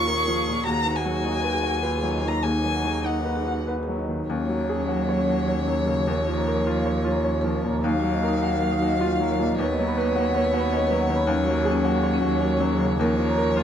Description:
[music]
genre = neoclassical piano and strings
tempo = 95-107 BPM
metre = 3/4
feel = rubato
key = unclear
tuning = A4 = 440 Hz
[part]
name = rich violin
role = melody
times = 0.0-13.6 s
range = C#5 to Db6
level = -28 LUFS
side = left 3 dB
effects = none
[part]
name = rich cello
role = second line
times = 0.0-13.6 s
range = F3 to Ab4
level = -30 LUFS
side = right 5 dB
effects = tape echo
[part]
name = bright upright piano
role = accompaniment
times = 0.0-13.6 s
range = Eb2 to F5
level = -27 LUFS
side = left 1 dB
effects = none
[part]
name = clear double bass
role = bass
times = 0.0-13.6 s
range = Eb2 to D#2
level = -27 LUFS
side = equal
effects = none
[part]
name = marimba with medium mallets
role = arpeggios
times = 0.2-13.5 s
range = Db4 to B5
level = -30 LUFS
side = left 1 dB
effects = none
[sound]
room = little or no reverb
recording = close, detailed microphones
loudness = -21 LUFS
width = side -9 dB against mid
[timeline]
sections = 0.0-4.3 A section; 4.3-13.6 B section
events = none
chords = 0.0 Bbm/Eb; 0.7 Abm7/Eb; 4.3 Dbsus4/Eb; 6.1 Bbm/Eb; 7.8 Ebmadd9; 9.6 Badd9/D#; 11.3 Dbsus4/Eb; 13.0 Bbm/Eb

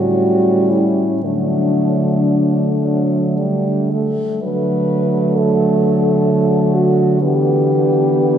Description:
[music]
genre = classical, lyrical piece for horn quartet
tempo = 37-44 BPM (dotted quarters)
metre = 6/8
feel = rubato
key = D major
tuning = A4 = 436 Hz
[part]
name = mellow French horn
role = melody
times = 0.0-8.4 s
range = D4 to B4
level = -18 LUFS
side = left 2 dB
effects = none
[part]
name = dark French horn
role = second line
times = 0.0-8.4 s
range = A3 to C#4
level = -20 LUFS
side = right 4 dB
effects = none
[part]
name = mellow French horn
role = accompaniment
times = 0.0-8.4 s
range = E3 to A3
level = -19 LUFS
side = equal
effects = none
[part]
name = dark French horn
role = bass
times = 0.0-8.4 s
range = A2 to D3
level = -19 LUFS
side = right 1 dB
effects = none
[sound]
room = wet church reverb, RT60 3.4 s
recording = recorded in a church or concert hall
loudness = -13 LUFS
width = side -9 dB against mid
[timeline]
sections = 0.0-4.4 A section; 4.4-8.4 B section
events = none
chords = 0.0 A7; 1.2 D; 7.2 Em7/D

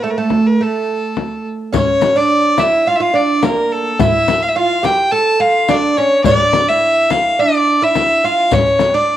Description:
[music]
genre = Arabic maqam ensemble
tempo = 106 BPM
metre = 4/4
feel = straight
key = D maqam nahawand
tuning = A4 = 440 Hz
[part]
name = clear violin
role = melody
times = 0.0-9.2 s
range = A4 to A5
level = -14 LUFS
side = left 1 dB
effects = none
[part]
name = oud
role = second line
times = 0.0-9.2 s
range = A3 to A4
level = -17 LUFS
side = right 4 dB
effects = none
[part]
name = darbuka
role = percussion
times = 0.0-9.2 s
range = none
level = -25 LUFS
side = left 4 dB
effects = none
[part]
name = frame drum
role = percussion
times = 0.3-8.9 s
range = none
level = -19 LUFS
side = left 7 dB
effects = none
[part]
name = riq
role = percussion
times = 1.7-9.0 s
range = none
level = -26 LUFS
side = left 8 dB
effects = none
[sound]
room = moderate spring reverb, RT60 1.9 s, small room ambience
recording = home recording on cassette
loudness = -12 LUFS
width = side -12 dB against mid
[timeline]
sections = 0.0-1.7 A section; 1.7-9.2 B section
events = none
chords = none

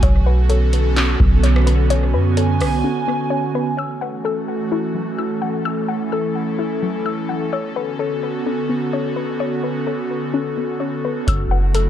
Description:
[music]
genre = hip hop, atmospheric cloud-rap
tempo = 128 BPM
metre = 4/4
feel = half-time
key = F# minor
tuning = A4 = 441 Hz
[part]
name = airy breathy pad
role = sustained chords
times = 0.0-11.9 s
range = C#3 to G#5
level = -21 LUFS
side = right 2 dB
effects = chorus, sidechain pumping
[part]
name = soft round pluck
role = arpeggios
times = 0.0-11.9 s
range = F#3 to E6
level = -25 LUFS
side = left 7 dB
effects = chorus, analog delay
[part]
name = soft 808-style bass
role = bass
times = 0.0-2.8, 11.3-11.9 s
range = F#1 to F#2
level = -16 LUFS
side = equal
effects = none
[part]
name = booming analog drum machine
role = drums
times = 0.0-2.7, 11.3-11.9 s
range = handclaps, hi-hat, kick drum, rim click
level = -21 LUFS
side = equal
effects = analog delay
[sound]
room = light reverb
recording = echo-heavy mix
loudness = -17 LUFS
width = side -10 dB against mid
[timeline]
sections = 0.0-3.8 A section; 3.8-11.3 B section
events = break 2.8-3.8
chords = 0.0 Bm9; 3.8 F#m7; 7.5 Bm9; 11.3 F#m7

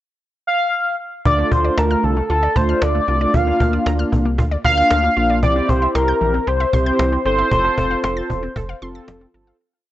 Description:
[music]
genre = synth-pop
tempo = 115 BPM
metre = 4/4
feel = straight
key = unclear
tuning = A4 = 440 Hz
[part]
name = octave-doubled lead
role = melody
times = 0.5-9.0 s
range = A4 to F5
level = -18 LUFS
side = equal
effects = chorus, phaser
[part]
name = mellow synth brass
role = accompaniment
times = 1.3-9.6 s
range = A3 to A4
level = -22 LUFS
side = right 1 dB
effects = chorus
[part]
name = analog pluck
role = arpeggios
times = 1.3-9.6 s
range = D3 to A6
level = -29 LUFS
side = equal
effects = chorus, analog delay
[part]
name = round analog bass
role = bass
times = 1.3-9.5 s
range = E1 to D2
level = -21 LUFS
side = equal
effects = none
[part]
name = cajon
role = drums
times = 1.3-9.2 s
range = none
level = -22 LUFS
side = equal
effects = none
[sound]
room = little or no reverb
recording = dry, gritty hardware recording, nothing above 7.9 kHz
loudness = -15 LUFS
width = side -14 dB against mid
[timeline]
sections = 0.0-1.3 pickup bar; 1.3-9.6 verse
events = fade-out 7.5-9.6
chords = 0.0 N.C.; 1.3 Dm; 3.3 Bb; 5.4 C; 7.5 F

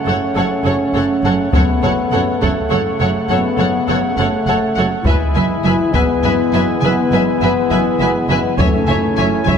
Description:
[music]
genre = cinematic, epic orchestral film score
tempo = 68 BPM (dotted quarters)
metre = 12/8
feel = straight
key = F# minor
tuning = A4 = 440 Hz
[part]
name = bright trombone section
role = sustained chords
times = 0.0-9.6 s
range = C#3 to C#4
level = -24 LUFS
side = right 4 dB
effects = none
[part]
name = warm French horn section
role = sustained chords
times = 0.0-9.6 s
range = G#3 to E4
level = -18 LUFS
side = left 4 dB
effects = none
[part]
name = warm woodwind section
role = sustained chords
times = 0.0-9.6 s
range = A3 to G#5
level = -25 LUFS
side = right 1 dB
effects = none
[part]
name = warm symphonic violin section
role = melody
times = 0.1-9.5 s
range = F#5 to G#5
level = -26 LUFS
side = left 3 dB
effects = none
[part]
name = rich symphonic violin section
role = second line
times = 0.1-9.6 s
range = C#5 to E5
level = -25 LUFS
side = left 1 dB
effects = none
[part]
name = rich symphonic viola section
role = accompaniment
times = 0.1-9.6 s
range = A4 to C#5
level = -24 LUFS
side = right 2 dB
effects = none
[part]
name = warm symphonic cello section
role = bass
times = 0.1-9.5 s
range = F#2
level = -22 LUFS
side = right 2 dB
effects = none
[part]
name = warm symphonic double bass section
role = bass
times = 0.1-9.6 s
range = F#1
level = -22 LUFS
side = right 3 dB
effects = none
[part]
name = taiko ensemble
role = drums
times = 1.5-9.6 s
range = none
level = -19 LUFS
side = equal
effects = none
[part]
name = timpani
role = percussion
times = 8.6-9.4 s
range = F#2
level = -24 LUFS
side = left 1 dB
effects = none
[sound]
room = wet concert hall reverb, RT60 2.4 s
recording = none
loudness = -13 LUFS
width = side -7 dB against mid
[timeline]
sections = 0.0-9.6 A section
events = none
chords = 0.0 F#m; 5.1 E/F#; 8.6 C#m/F#

